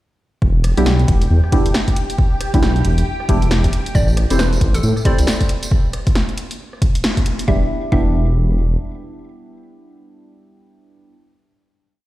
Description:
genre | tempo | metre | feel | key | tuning
UK garage, two-step garage | 136 BPM | 4/4 | swing 60% on 16ths | E minor | A4 = 441 Hz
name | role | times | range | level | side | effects
soft string machine | sustained chords | 0.4-5.7 s | G4 to G5 | -30 LUFS | equal | phaser, ensemble chorus, sidechain pumping
dark detuned saw bass | bass | 0.4-8.8 s | E1 to A2 | -16 LUFS | equal | sidechain pumping
electronic kick drum | drums | 0.4-8.1 s | none | -17 LUFS | equal | overdrive
punchy analog drum machine | drums | 0.6-7.5 s | hi-hat, rim click, snare drum | -24 LUFS | equal | overdrive
deep mellow chord stab | stabs | 0.8-11.2 s | G3 to C5 | -23 LUFS | right 1 dB | chorus, digital delay
hollow square pluck | melody | 3.9-11.2 s | A4 to E5 | -28 LUFS | equal | chorus, digital delay
tambourine | percussion | 4.0-5.7 s | none | -32 LUFS | right 3 dB | none
room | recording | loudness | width
light reverb, digital ambience | played on a big sound system in a bare room, stone room reverb | -14 LUFS | side -16 dB against mid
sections
0.4-7.5 drop; 7.5-11.0 final chord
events
drop 0.4-7.5; band accent 7.0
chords
0.4 Em7; 3.7 Am7; 7.5 Em7

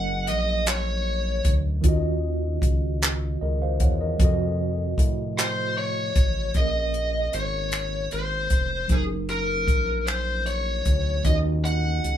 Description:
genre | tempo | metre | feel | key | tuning
slow six-eight R&B | 51 BPM (dotted quarters) | 6/8 | straight | Bb minor | A4 = 439 Hz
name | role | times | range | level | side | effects
lead guitar through a small cranked amp | melody | 0.0-1.5, 5.4-12.2 s | Ab4 to Gb5 | -26 LUFS | left 1 dB | overdrive
tine electric piano | accompaniment | 0.0-12.2 s | Bb2 to Gb5 | -30 LUFS | right 1 dB | medium stereo tremolo
round analog bass | bass | 0.0-12.2 s | F1 to A2 | -27 LUFS | equal | none
compact cocktail drum kit | drums | 0.3-12.2 s | finger snaps, handclaps, hi-hat, kick drum | -22 LUFS | equal | none
room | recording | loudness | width
moderate studio reverb, RT60 0.6 s | band playing live in one room | -22 LUFS | side -10 dB against mid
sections
0.0-6.5 A section; 6.5-12.2 B section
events
none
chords
0.0 Gb69; 1.8 Ebm9; 4.2 F7b9; 6.5 Bbm9; 8.9 Gb69; 11.3 Ebm7

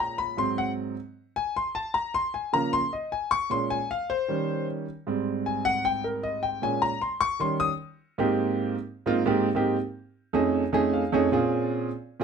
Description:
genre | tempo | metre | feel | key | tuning
jazz | 154 BPM | 4/4 | straight | Ab major | A4 = 441 Hz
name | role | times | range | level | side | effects
warm concert grand piano | solo | 0.0-12.2 s | F2 to Eb6 | -24 LUFS | right 1 dB | none
room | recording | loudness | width
moderate studio reverb, RT60 0.6 s | close, detailed microphones | -24 LUFS | side -6 dB against mid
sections
0.0-8.2 A section; 8.2-12.2 B section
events
grand piano solo 0.0-8.2; grand piano fill 10.5-11.3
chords
0.4 Ab7; 1.9 Db6; 3.5 Bbm7; 4.3 Eb7; 5.1 Abmaj7; 6.6 Bbm7; 7.4 Eb7; 8.2 Abmaj9; 9.8 F7alt; 11.3 Bbm9

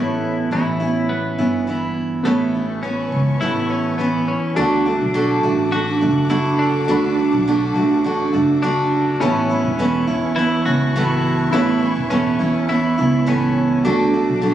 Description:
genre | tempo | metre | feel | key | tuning
acoustic pop | 104 BPM | 4/4 | straight | D major | A4 = 439 Hz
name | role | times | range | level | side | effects
twelve-string electric guitar | second line | 0.0-14.5 s | A3 to F#4 | -25 LUFS | left 1 dB | none
clear upright piano | accompaniment | 0.0-14.5 s | B3 to B5 | -28 LUFS | left 2 dB | none
picked steel-string acoustic guitar | accompaniment | 0.0-14.5 s | A2 to F#4 | -18 LUFS | right 2 dB | none
upright bass | bass | 0.0-14.5 s | E1 to E2 | -24 LUFS | equal | none
warm studio string section | sustained chords | 2.2-14.5 s | A4 to D6 | -33 LUFS | left 3 dB | none
room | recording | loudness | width
light reverb | recorded on a phone in the room, club reverb, faint mains hum | -16 LUFS | side -11 dB against mid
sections
0.0-2.3 A section; 2.3-4.6 B section; 4.6-14.5 C section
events
none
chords
0.0 Aadd9; 4.6 D; 9.2 Aadd9; 13.8 D

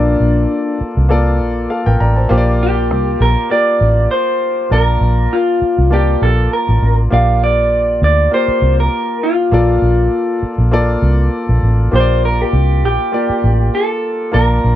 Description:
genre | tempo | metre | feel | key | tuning
lush 1970s-style soul | 100 BPM | 4/4 | swing 54% on 16ths | Bb major | A4 = 442 Hz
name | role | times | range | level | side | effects
electric guitar through a small old amp | melody | 0.0-14.8 s | D4 to F5 | -15 LUFS | equal | none
clear concert grand piano | accompaniment | 0.0-14.8 s | Bb3 to Bb5 | -19 LUFS | left 1 dB | none
vintage muted fingered electric bass | bass | 0.0-14.8 s | A1 to D2 | -13 LUFS | equal | none
room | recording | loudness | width
little or no reverb | dry, close 1970s-style studio recording | -12 LUFS | side -12 dB against mid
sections
0.0-14.8 A section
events
none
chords
0.0 Bbmaj13; 4.7 Bbmaj9; 7.1 Bb6; 9.5 Bbmaj7; 11.9 Bb6

